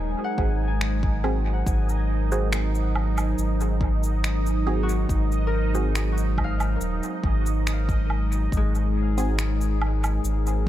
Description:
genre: ambient dub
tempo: 70 BPM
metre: 4/4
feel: straight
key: Ab mixolydian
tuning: A4 = 440 Hz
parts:
  - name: warbly tape-like pad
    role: sustained chords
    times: 0.0-10.7 s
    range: Gb3 to C5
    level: -30 LUFS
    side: right 2 dB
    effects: chorus, built-in reverb
  - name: concert harp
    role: arpeggios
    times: 0.0-10.7 s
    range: Ab3 to Ab5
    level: -36 LUFS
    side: left 5 dB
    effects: dub echo
  - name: warm sub bass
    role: bass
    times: 0.0-10.7 s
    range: Eb1 to Ab1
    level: -24 LUFS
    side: equal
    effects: tube saturation
  - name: bubbling stepped-filter texture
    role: texture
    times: 0.0-10.7 s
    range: Eb4 to Ab5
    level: -35 LUFS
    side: equal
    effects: chorus, built-in reverb
  - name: filtered dub chord stab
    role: stabs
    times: 0.4-9.3 s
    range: C4 to Ab4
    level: -34 LUFS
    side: right 2 dB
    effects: phaser, dub echo
  - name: electronic kick drum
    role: drums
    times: 0.4-10.7 s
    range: none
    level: -26 LUFS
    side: equal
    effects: none
  - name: electronic finger snaps, woodblock and cabasa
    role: drums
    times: 0.8-10.6 s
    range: none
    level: -33 LUFS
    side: right 1 dB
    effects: dub echo
room: little or no reverb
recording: none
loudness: -22 LUFS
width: side -13 dB against mid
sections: 0.0-10.7 A section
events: none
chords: 0.0 Ab7

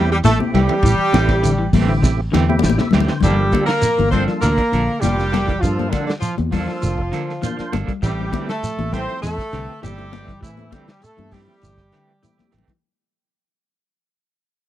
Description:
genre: afrobeat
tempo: 100 BPM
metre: 4/4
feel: straight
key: unclear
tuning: A4 = 440 Hz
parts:
  - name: clear horn section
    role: melody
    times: 0.0-12.5 s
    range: D3 to C5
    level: -22 LUFS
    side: equal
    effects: none
  - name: brilliant trombone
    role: second line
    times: 0.0-12.5 s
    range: D3 to C4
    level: -28 LUFS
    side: right 2 dB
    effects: none
  - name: percussive tonewheel organ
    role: accompaniment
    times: 0.0-12.6 s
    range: F3 to G5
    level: -27 LUFS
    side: right 2 dB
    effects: overdrive, chorus vibrato, slow rotary speaker
  - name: electric guitar at the edge of break-up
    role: stabs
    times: 0.0-12.7 s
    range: E3 to A4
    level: -27 LUFS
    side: right 8 dB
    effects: tremolo
  - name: fingered electric bass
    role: bass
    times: 0.0-12.7 s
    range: F1 to A2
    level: -20 LUFS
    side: equal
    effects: none
  - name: semi-hollow electric guitar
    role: arpeggios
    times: 0.2-12.8 s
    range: C3 to G3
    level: -27 LUFS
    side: left 4 dB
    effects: none
  - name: warm soul drum kit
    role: drums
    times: 0.2-12.8 s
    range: hi-hat, kick drum, ride cymbal, snare drum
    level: -21 LUFS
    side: equal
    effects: none
  - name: congas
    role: percussion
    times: 0.2-12.8 s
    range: none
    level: -23 LUFS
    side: left 8 dB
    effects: none
  - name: shekere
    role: percussion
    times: 0.2-12.7 s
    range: none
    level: -23 LUFS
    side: right 3 dB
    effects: none
room: little or no reverb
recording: dry, close 1970s-style studio recording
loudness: -16 LUFS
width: side -12 dB against mid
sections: 0.0-3.2 A section; 3.2-12.8 B section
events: drum fill 2.0-3.2, 12.4-12.8; tonewheel organ fill 2.3-3.2; fade-out 3.2-12.8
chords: 0.0 Am7; 3.2 Gm9; 8.0 Am7

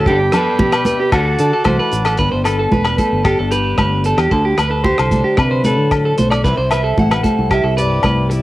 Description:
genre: highlife guitar band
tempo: 113 BPM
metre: 4/4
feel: straight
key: G major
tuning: A4 = 437 Hz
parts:
  - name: electric guitar at the edge of break-up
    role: melody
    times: 0.0-8.4 s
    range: D4 to F#5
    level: -21 LUFS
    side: equal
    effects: vibrato effect, cassette tape
  - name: picked steel-string acoustic guitar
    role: accompaniment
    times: 0.0-8.4 s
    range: G2 to B4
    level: -24 LUFS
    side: left 3 dB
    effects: cassette tape
  - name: overdriven combo organ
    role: sustained chords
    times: 0.0-2.2 s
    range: F#5 to D6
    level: -25 LUFS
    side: right 1 dB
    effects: cassette tape
  - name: clean electric guitar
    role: arpeggios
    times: 0.0-8.3 s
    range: F#4 to D5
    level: -18 LUFS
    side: right 2 dB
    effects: cassette tape
  - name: fingered electric bass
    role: bass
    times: 0.0-8.4 s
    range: E1 to D3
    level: -18 LUFS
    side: equal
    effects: none
  - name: damped 70s drum kit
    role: drums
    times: 0.1-8.4 s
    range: hi-hat, kick drum, rim click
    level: -21 LUFS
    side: equal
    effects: cassette tape
  - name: congas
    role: percussion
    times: 0.1-8.4 s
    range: none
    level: -20 LUFS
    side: right 1 dB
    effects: none
  - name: agogo bells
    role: percussion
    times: 0.3-8.2 s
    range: none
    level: -23 LUFS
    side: left 5 dB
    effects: none
room: light reverb, small room ambience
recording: home recording on cassette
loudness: -13 LUFS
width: side -16 dB against mid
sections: 0.0-2.2 A section; 2.2-8.4 B section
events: clean electric guitar solo 2.2-8.4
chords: 0.1 G; 1.1 D; 2.2 G; 4.3 D; 6.4 C

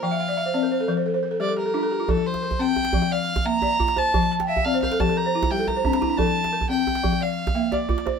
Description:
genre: west african traditional, West African string and xylophone music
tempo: 117 BPM (dotted quarters)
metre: 12/8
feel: straight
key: F major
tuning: A4 = 440 Hz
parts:
  - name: warm fiddle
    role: melody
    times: 0.0-8.2 s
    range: A4 to Bb5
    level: -25 LUFS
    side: right 1 dB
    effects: none
  - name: balafon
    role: arpeggios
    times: 0.0-8.2 s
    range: F3 to A5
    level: -23 LUFS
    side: left 2 dB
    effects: none
  - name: djembe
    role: percussion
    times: 2.1-8.1 s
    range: none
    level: -27 LUFS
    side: right 3 dB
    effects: none
room: moderate studio reverb, RT60 0.6 s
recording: minimal, uncompressed stereo recording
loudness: -20 LUFS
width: side -6 dB against mid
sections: 0.0-8.2 A section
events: fiddle solo 0.0-8.2; balafon fill 0.0-2.1, 4.3-6.2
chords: 0.0 F5; 1.1 Gm; 2.1 F; 3.1 Bb; 4.1 F5; 5.2 Gm; 6.2 F; 7.2 Bb

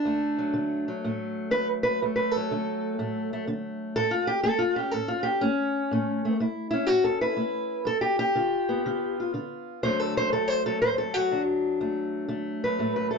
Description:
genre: acoustic country blues, solo or duo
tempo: 122 BPM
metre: 4/4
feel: swing 67% on 8ths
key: D major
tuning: A4 = 440 Hz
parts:
  - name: fingerpicked steel-string acoustic guitar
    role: solo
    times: 0.0-13.2 s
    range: D2 to C5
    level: -24 LUFS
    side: equal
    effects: none
room: light reverb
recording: nothing above 7.7 kHz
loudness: -24 LUFS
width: side -5 dB against mid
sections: 0.0-11.8 A section; 11.8-13.2 B section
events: steel-string acoustic guitar solo 0.0-11.8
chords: 0.0 D; 4.0 A; 7.9 G7; 9.8 D

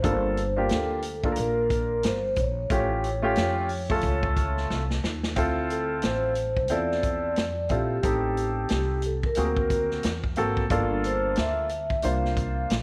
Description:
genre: hip hop, jazz-hop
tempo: 90 BPM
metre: 4/4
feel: swing 60% on 16ths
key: D minor from 5.4 s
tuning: A4 = 440 Hz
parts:
  - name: vibraphone with soft mallets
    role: melody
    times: 0.0-12.8 s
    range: G4 to F5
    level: -31 LUFS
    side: equal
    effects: slapback echo
  - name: warm baby grand piano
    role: accompaniment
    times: 0.0-12.7 s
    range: A3 to C5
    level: -31 LUFS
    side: equal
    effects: none
  - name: upright bass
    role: bass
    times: 0.0-12.8 s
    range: G1 to E#2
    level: -32 LUFS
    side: equal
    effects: tube saturation
  - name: vintage drum kit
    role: drums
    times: 0.0-12.8 s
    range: hi-hat, kick drum, snare drum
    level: -32 LUFS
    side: equal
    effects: none
room: light reverb, small room ambience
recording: none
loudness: -26 LUFS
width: mono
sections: 0.0-5.4 A section; 5.4-12.8 B section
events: drum fill 4.7-5.4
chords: 0.0 Gm7; 2.7 A7b13; 5.4 Dm9; 8.0 Am7b5; 9.4 D7b13; 10.7 Gm9

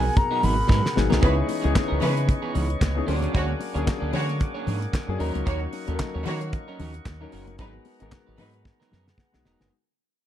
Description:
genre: disco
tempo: 113 BPM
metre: 4/4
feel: swing 56% on 16ths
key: C# dorian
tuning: A4 = 442 Hz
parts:
  - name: bright alto flute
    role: melody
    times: 0.0-1.0 s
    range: G#5 to B5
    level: -25 LUFS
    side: left 1 dB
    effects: none
  - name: electric guitar at the edge of break-up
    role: accompaniment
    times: 0.0-9.7 s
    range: E3 to D5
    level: -33 LUFS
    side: right 8 dB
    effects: analog chorus
  - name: warm concert grand piano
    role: accompaniment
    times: 0.0-9.7 s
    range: E3 to F#5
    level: -31 LUFS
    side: left 8 dB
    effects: none
  - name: tonewheel organ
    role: sustained chords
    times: 0.0-9.7 s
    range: B2 to D6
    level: -34 LUFS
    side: right 1 dB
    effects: overdrive, slow rotary speaker
  - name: deep dub fingered electric bass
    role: bass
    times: 0.0-9.7 s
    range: E1 to D#3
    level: -26 LUFS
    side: equal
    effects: none
  - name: damped 70s drum kit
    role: drums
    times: 0.2-9.7 s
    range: handclaps, hi-hat, kick drum, snare drum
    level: -24 LUFS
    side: equal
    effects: none
  - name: congas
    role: percussion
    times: 0.2-9.7 s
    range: none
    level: -34 LUFS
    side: left 6 dB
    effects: none
  - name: clear studio string section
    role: second line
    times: 1.2-8.6 s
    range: F#3 to C#5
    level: -31 LUFS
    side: right 1 dB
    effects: none
room: light reverb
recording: dark, warm production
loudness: -22 LUFS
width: side -11 dB against mid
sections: 0.0-1.2 A section; 1.2-9.7 B section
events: drum fill 0.7-1.2, 8.7-9.7; fade-out 1.2-9.7; grand piano fill 8.9-9.7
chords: 0.0 G#m9; 1.2 C#m9; 3.1 A#7alt/D; 5.2 D#m7; 7.6 G#m9

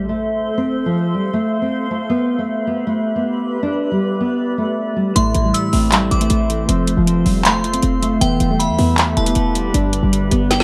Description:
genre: hip hop, trap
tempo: 157 BPM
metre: 4/4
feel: half-time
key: A minor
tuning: A4 = 436 Hz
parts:
  - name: nylon-string guitar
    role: melody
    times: 0.0-10.6 s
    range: F3 to D4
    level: -21 LUFS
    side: equal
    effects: none
  - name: granular cloud pad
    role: sustained chords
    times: 0.0-10.6 s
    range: G4 to C6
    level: -30 LUFS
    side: equal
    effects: built-in reverb
  - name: impact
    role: sound effects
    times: 0.0-0.6 s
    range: none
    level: -38 LUFS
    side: equal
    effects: none
  - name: glassy synth bell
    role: second line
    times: 5.2-10.6 s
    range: G5 to E6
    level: -26 LUFS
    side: equal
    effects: chorus, analog delay
  - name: clean electric guitar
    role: accompaniment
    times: 5.2-10.6 s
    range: G2 to F5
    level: -25 LUFS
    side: equal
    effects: none
  - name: short 808-style bass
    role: bass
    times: 5.2-10.6 s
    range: E1 to E2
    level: -21 LUFS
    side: equal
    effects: none
  - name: trap drum kit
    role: drums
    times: 5.2-10.6 s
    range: handclaps, hi-hat, snare drum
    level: -21 LUFS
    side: equal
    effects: none
room: light reverb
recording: dark, warm production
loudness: -18 LUFS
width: mono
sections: 0.0-10.6 A section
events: impact 0.0-0.6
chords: 0.0 Am; 0.6 F; 2.1 Em; 3.6 G; 5.2 Am; 6.7 F; 8.2 Em; 9.7 G

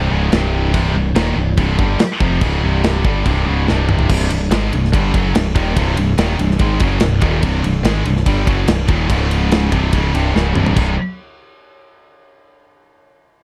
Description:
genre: heavy metal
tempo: 144 BPM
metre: 4/4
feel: straight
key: C minor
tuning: A4 = 440 Hz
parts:
  - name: heavy high-gain guitar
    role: riff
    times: 0.0-10.9 s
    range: C2 to Ab3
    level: -26 LUFS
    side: equal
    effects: distortion
  - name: scooped high-gain guitar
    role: riff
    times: 0.0-10.9 s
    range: C2 to Eb4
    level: -25 LUFS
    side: equal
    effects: distortion
  - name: tight distorted guitar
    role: riff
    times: 0.0-10.9 s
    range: C2 to Ab3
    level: -25 LUFS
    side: equal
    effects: distortion
  - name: growling picked electric bass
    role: bass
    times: 0.0-11.0 s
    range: C1 to Ab1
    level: -20 LUFS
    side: equal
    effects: overdrive
  - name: tight metal drum kit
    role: drums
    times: 0.3-10.9 s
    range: crash cymbal, kick drum, ride cymbal, snare drum, toms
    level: -21 LUFS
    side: equal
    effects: none
room: little or no reverb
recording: dark, warm production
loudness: -16 LUFS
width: mono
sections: 0.0-4.1 A section; 4.1-10.8 B section; 10.8-12.4 C section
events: drum fill 3.7-4.1, 10.4-10.8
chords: 0.0 Cm; 9.1 Db5; 9.7 C5

